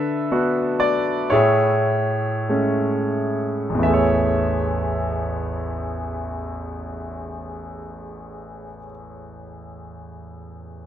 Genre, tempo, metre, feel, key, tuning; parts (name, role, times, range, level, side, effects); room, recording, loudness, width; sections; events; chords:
classical, lyrical solo piano; 44-66 BPM; 4/4; rubato; A major; A4 = 440 Hz
clear concert grand piano; solo; 0.0-10.9 s; A1 to E5; -21 LUFS; equal
light reverb; dark, warm production; -19 LUFS; side -10 dB against mid
0.0-3.8 A section; 3.8-9.0 B section
slowing down 0.0-3.8
0.0 D6; 1.3 Amaj7